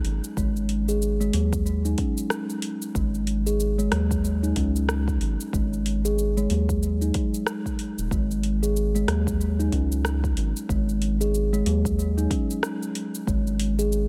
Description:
organic downtempo; 93 BPM; 4/4; swing 59% on 16ths; A4 = 440 Hz
steel tongue drum; arpeggios; 0.0-14.1 s; F#3 to G#4; -29 LUFS; equal; delay
round analog bass; bass; 0.0-14.1 s; D#1 to D#2; -27 LUFS; equal; sidechain pumping
afro-pop drum kit; drums; 0.0-14.1 s; cabasa, hi-hat, rim click; -34 LUFS; equal
electronic kick drum; drums; 0.4-13.4 s; -31 LUFS; equal
light reverb; -25 LUFS; mono
0.0-14.1 A section
0.0 G#5
| 0.37 1.02 1.66 2.31 | 2.95 3.60 4.24 4.89 | 5.53 6.18 6.82 7.47 | 8.11 8.76 9.40 10.05 | 10.69 11.34 11.98 12.63 | 13.27 13.92

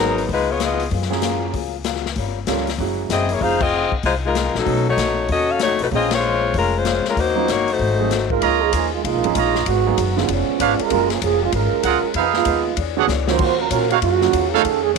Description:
jazz, big band swing; 192 BPM; 4/4; swing 63% on 8ths; A4 = 440 Hz
warm saxophone section; melody; 0.0-0.9, 3.1-8.3 s; Gb3 to F5; -19 LUFS; left 5 dB
picked acoustic archtop guitar; accompaniment; 0.0-15.0 s; F2 to C#5; -30 LUFS; left 14 dB
warm baby grand piano; accompaniment; 0.0-14.6 s; D3 to Bb4; -25 LUFS; right 14 dB
upright bass; bass; 0.0-15.0 s; F1 to Bb2; -25 LUFS; left 1 dB
swinging big-band drum kit; drums; 0.2-15.0 s; crash cymbal, hi-hat, kick drum, ride cymbal, snare drum; -26 LUFS; left 7 dB
warm trombone section; second line; 8.3-15.0 s; Db3 to C5; -19 LUFS; right 13 dB
clear trumpet section; stabs; 8.4-14.6 s; D4 to Bb5; -20 LUFS; right 12 dB
light reverb; 1960s-style stereo with parts hard left and right; -17 LUFS; side -4 dB against mid
0.0-8.4 A section; 8.4-15.0 B section
band accent 3.6, 6.1; trombone section solo 8.4-15.0; drum fill 13.1-13.4
0.3 Db9; 0.9 Gbmaj9; 2.2 Gm7b5; 2.8 Gb9; 3.4 Fm7; 4.7 B9; 5.9 Bbm9; 7.2 Ebm7; 7.8 Ab7b9; 8.4 Db69; 9.7 Abm7; 10.3 Db7b9; 10.9 Gbmaj9; 12.2 Fm7b5; 12.8 E13; 13.4 Ebm9
0.29 0.60 | 0.91 1.23 1.54 1.85 | 2.17 2.48 2.79 3.10 | 3.42 3.73 4.04 4.35 | 4.67 4.98 5.29 5.60 | 5.92 6.23 6.54 6.85 | 7.17 7.48 7.79 8.10 | 8.41 8.73 9.04 9.35 | 9.66 9.97 10.28 10.60 | 10.91 11.22 11.53 11.84 | 12.15 12.46 12.77 13.08 | 13.39 13.71 14.02 14.33 | 14.64 14.95

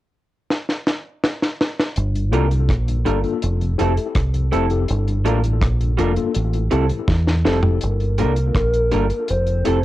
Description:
lovers rock reggae; 82 BPM; 4/4; straight; G dorian; A4 = 440 Hz
deep reggae drum kit; drums; 0.5-9.8 s; hi-hat, kick drum, rim click, snare drum, toms; -21 LUFS; equal; cassette tape
deep dub fingered electric bass; bass; 2.0-9.8 s; F1 to E2; -19 LUFS; equal
mellow tonewheel organ; accompaniment; 2.1-7.6 s; F2 to G4; -33 LUFS; left 5 dB
mellow tine electric piano; accompaniment; 2.3-9.8 s; Bb3 to A4; -25 LUFS; left 7 dB; medium stereo tremolo, cassette tape, tape echo, plate reverb
electric guitar through a small old amp; stabs; 2.3-9.8 s; G3 to Bb4; -24 LUFS; right 7 dB; cassette tape
hollow clarinet-like synth lead; melody; 7.9-9.8 s; Bb4 to C5; -23 LUFS; equal; chorus, cassette tape, tape echo
light reverb; home recording on cassette; -17 LUFS; side -15 dB against mid
0.0-2.0 A section; 2.0-7.8 B section; 7.8-9.8 C section
drum fill 0.5-2.0, 7.1-7.8
0.0 N.C.; 2.0 Gm7; 3.4 Fmaj7; 4.9 Gm7; 6.4 Am7; 7.8 Gm7; 9.3 Fmaj7
0.49 1.22 | 1.96 2.69 3.42 4.16 | 4.89 5.62 6.35 7.08 | 7.82 8.55 9.28

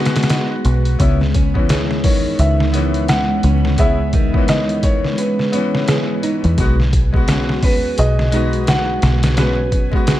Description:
trip hop; 86 BPM; 4/4; swing 60% on 16ths; C# minor; A4 = 442 Hz
felt-muted upright piano; melody; 0.0-10.2 s; B4 to F#5; -23 LUFS; equal; vintage 12-bit sampler grit, tape echo
bright upright piano; accompaniment; 0.0-10.2 s; E3 to F#4; -23 LUFS; left 3 dB; harmonic tremolo, tape echo
string machine, cellos; sustained chords; 0.0-10.2 s; G#3 to B5; -25 LUFS; equal; ensemble chorus
flamenco guitar; arpeggios; 0.0-10.2 s; D#3 to G#4; -26 LUFS; right 3 dB; tape echo
deep dub fingered electric bass; bass; 0.0-10.2 s; B1 to F#2; -18 LUFS; equal
bowed-like drone; texture; 0.1-10.2 s; B3; -30 LUFS; left 1 dB
trip hop sampler-style drum kit; drums; 0.1-10.2 s; hi-hat, kick drum, snare drum; -17 LUFS; equal; studio reverb
studio ambience; dark, warm production, vinyl crackle; -14 LUFS; side -14 dB against mid
0.0-10.2 A section
0.0 G#m7/B; 1.0 C#m7; 6.6 G#m7/B
0.30 | 1.00 1.70 2.40 3.09 | 3.79 4.49 5.18 5.88 | 6.58 7.28 7.98 8.67 | 9.37 10.07

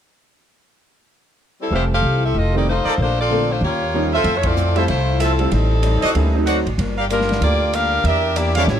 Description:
jazz, big band swing; 190 BPM; 4/4; swing 60% on 8ths; F major; A4 = 441 Hz
warm saxophone section; melody; 1.6-8.8 s; F3 to F5; -20 LUFS; equal
bright upright piano; accompaniment; 1.7-8.8 s; D3 to A4; -26 LUFS; right 4 dB
picked old ladder-braced acoustic guitar; accompaniment; 1.7-8.8 s; G2 to C5; -27 LUFS; left 8 dB
clear trumpet section; stabs; 1.7-8.6 s; F4 to F#5; -24 LUFS; right 1 dB
upright bass; bass; 1.7-8.8 s; F1 to F2; -20 LUFS; equal
swinging big-band drum kit; drums; 4.2-8.8 s; hi-hat, kick drum, ride cymbal, snare drum; -28 LUFS; right 1 dB
light reverb; -16 LUFS; side -9 dB against mid
0.5-1.7 A section; 1.7-4.3 B section; 4.3-8.8 C section
band accent 4.4
0.5 N.C.; 1.7 Fmaj9; 2.4 F7; 3.0 Bbmaj9; 3.6 Eb9; 4.3 Fmaj7; 5.5 Am7b5; 6.1 D7b9; 6.8 Gm7; 8.0 Em7b5
| 0.46 0.77 1.09 1.41 | 1.72 2.04 2.35 2.67 | 2.99 3.30 3.62 3.94 | 4.25 4.57 4.88 5.20 | 5.51 5.83 6.15 6.46 | 6.78 7.09 7.41 7.72 | 8.04 8.35 8.67

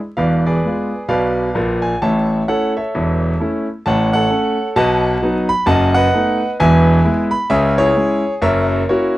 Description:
jazz, stride piano; 131 BPM; 4/4; swing 60% on 8ths; A major; A4 = 440 Hz
bright concert grand piano; solo; 0.2-9.2 s; E1 to B5; -14 LUFS; equal
light reverb; dry, close 1970s-style studio recording, vinyl crackle; -14 LUFS; side -16 dB against mid
0.0-9.2 A section
0.2 E7b9; 2.0 A; 3.8 F#m/A; 4.8 B7; 5.7 B7/F#; 6.6 E; 7.5 C#m; 8.4 F#7
| 0.17 0.63 1.09 1.55 | 2.01 2.47 2.93 3.39 | 3.85 4.31 4.76 5.22 | 5.68 6.14 6.60 7.05 | 7.51 7.97 8.43 8.88

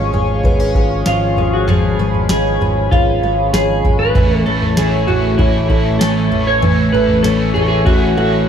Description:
dream pop; 97 BPM; 4/4; straight; A major; A4 = 440 Hz
phased analog pad; sustained chords; 0.0-8.5 s; A3 to C#6; -20 LUFS; equal; phaser, chorus
picked twelve-string acoustic guitar; arpeggios; 0.0-8.5 s; E3 to C#4; -21 LUFS; left 3 dB; analog chorus, tape echo
picked electric bass; bass; 0.0-8.4 s; G#1 to A1; -19 LUFS; equal
booming analog drum machine; drums; 0.1-8.1 s; kick drum, snare drum, toms; -18 LUFS; equal
clean electric guitar; melody; 1.1-8.5 s; E4 to C#5; -17 LUFS; right 1 dB; wide subtle chorus, tape echo
cranked stack guitar; accompaniment; 4.1-8.5 s; A2 to E4; -24 LUFS; right 3 dB; overdrive, harmonic tremolo, ensemble chorus
moderate plate reverb, RT60 1.9 s; dreamy mix soaked in reverb; -12 LUFS; side -8 dB against mid
0.0-8.5 A section
0.0 C#/G#; 4.2 A
0.44 1.06 | 1.68 2.30 2.92 3.54 | 4.15 4.77 5.39 6.01 | 6.63 7.25 7.87 8.48

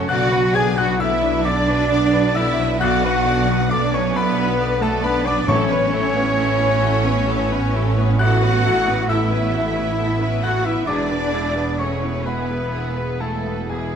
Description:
cinematic; 44 BPM (dotted quarters); 6/8; rubato; A major; A4 = 440 Hz
rich symphonic violin section; melody; 0.0-14.0 s; G#4 to D5; -30 LUFS; left 2 dB
clear oboe; second line; 0.0-14.0 s; G#4 to G#5; -28 LUFS; right 1 dB
dark clarinet; second line; 0.0-14.0 s; G#4 to G#5; -27 LUFS; left 1 dB
warm symphonic violin section; second line; 0.0-14.0 s; G#4 to G#5; -30 LUFS; left 3 dB
bright baby grand piano; accompaniment; 0.0-14.0 s; A1 to G#6; -27 LUFS; left 2 dB
rich symphonic viola section; accompaniment; 0.0-13.9 s; D3 to G#4; -29 LUFS; right 1 dB
warm French horn section; sustained chords; 0.0-14.0 s; G#3 to G#4; -26 LUFS; left 3 dB
concert harp; arpeggios; 0.0-14.0 s; E2 to B5; -28 LUFS; left 6 dB
rich symphonic cello section; bass; 0.0-14.0 s; G#3 to G#4; -24 LUFS; right 3 dB
rich symphonic double bass section; bass; 0.0-14.0 s; E1 to B1; -22 LUFS; right 3 dB
timpani; percussion; 5.5-6.8 s; A2; -26 LUFS; equal
moderate scoring stage reverb, RT60 1.5 s; -16 LUFS; side -7 dB against mid
0.0-14.0 A section
0.1 Bm; 5.5 Aadd9; 10.9 E
| 0.09 1.45 | 2.81 4.15 | 5.48 6.81 | 8.20 9.53 | 10.87 12.25 | 13.69

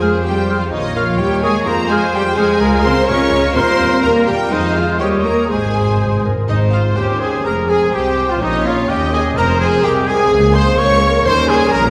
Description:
quick classical-period movement for symphony orchestra; 126 BPM; 2/4; straight; A4 = 440 Hz
warm studio violin section; melody; 0.0-11.9 s; Eb5 to Db6; -27 LUFS; equal
rich studio violin section; second line; 0.0-11.9 s; Eb4 to Db5; -27 LUFS; equal
silver concert flute; second line; 0.0-6.2 s; Eb6 to F6; -28 LUFS; equal
warm clarinet; second line; 0.0-11.8 s; Eb4 to Db5; -26 LUFS; equal
warm oboe; second line; 0.0-11.9 s; Eb4 to Db5; -28 LUFS; equal
warm studio viola section; accompaniment; 0.0-11.9 s; Eb4 to Eb5; -23 LUFS; equal
mellow French horn section; sustained chords; 0.0-11.9 s; G3 to F4; -25 LUFS; equal
clear trumpet; stabs; 0.0-11.8 s; Eb4 to Db5; -22 LUFS; equal
rich studio cello section; bass; 0.0-11.9 s; C2 to Db4; -23 LUFS; equal
rich studio double bass section; bass; 0.0-11.9 s; F1 to F2; -24 LUFS; equal
timpani; percussion; 5.5-6.9 s; Ab2; -23 LUFS; equal
wet scoring stage reverb, RT60 1.7 s; heard from further back in the room, vinyl crackle; -15 LUFS; mono
0.0-6.5 A section; 6.5-11.9 A section
timpani fill 5.5-6.5
0.0 Fm; 0.7 Bbm; 1.2 Eb7; 1.7 Fm; 2.6 Bbm7/Db; 3.6 Ebadd9; 4.5 Fm; 5.0 Eb7; 5.5 Ab; 7.0 Eb7; 7.5 Fm; 8.4 Bbm; 8.9 Eb7; 9.4 Fm; 10.3 Bbm7/Db; 11.3 Eb7
0.25 | 0.72 1.20 | 1.67 2.14 | 2.61 3.09 | 3.56 4.04 | 4.52 5.00 | 5.50 6.00 | 6.49 6.97 | 7.45 7.94 | 8.42 8.89 | 9.37 9.84 | 10.32 10.79 | 11.26 11.74

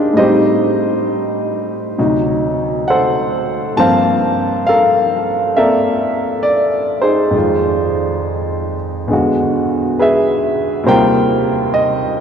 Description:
solo jazz; 68 BPM; 4/4; swing 66% on 8ths, rubato; A4 = 439 Hz
warm grand piano; solo; 0.0-12.2 s; D2 to A5; -13 LUFS; equal
wet cathedral reverb, RT60 6.2 s; recorded in a church or concert hall; -13 LUFS; side -7 dB against mid
0.0-12.2 A section
0.2 Am7b5; 2.0 D7b9; 3.8 Gm11; 7.3 Fm7; 9.1 E9; 10.9 Eb69
| 0.18 1.08 1.98 2.88 | 3.79 4.68 5.58 6.46 | 7.34 8.22 9.11 9.99 | 10.88 11.76

